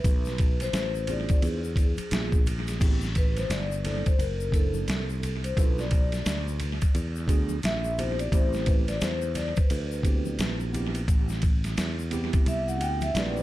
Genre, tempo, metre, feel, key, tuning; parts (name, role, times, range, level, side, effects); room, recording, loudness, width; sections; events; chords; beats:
hip hop, jazz-hop; 87 BPM; 4/4; swing 60% on 16ths; A dorian; A4 = 438 Hz
vibraphone with soft mallets; melody; 0.0-13.4 s; G#4 to G5; -33 LUFS; left 2 dB; analog delay
sustaining fretless electric bass; bass; 0.0-13.4 s; F#1 to E2; -30 LUFS; equal
boom bap sampler-style drum kit; drums; 0.0-13.4 s; crash cymbal, hi-hat, kick drum, ride cymbal, snare drum; -26 LUFS; equal
tube shaker and congas; percussion; 0.0-13.4 s; -41 LUFS; left 6 dB; analog delay
mellow tine electric piano; accompaniment; 1.1-13.4 s; A3 to A4; -36 LUFS; right 5 dB; medium stereo tremolo, analog delay
little or no reverb; echo-heavy mix; -24 LUFS; side -16 dB against mid
0.0-2.8 A section; 2.8-13.4 B section
vibraphone solo 2.8-13.4; kick muted 12.5-13.4
0.0 Bm7b5; 1.4 E7b9; 2.8 Am9; 4.2 F#7alt; 5.6 Bm7b5; 6.9 E7; 8.3 Am9
| 0.05 0.74 1.43 2.12 | 2.81 3.50 4.19 4.88 | 5.57 6.25 6.95 7.63 | 8.32 9.01 9.70 10.39 | 11.08 11.77 12.46 13.15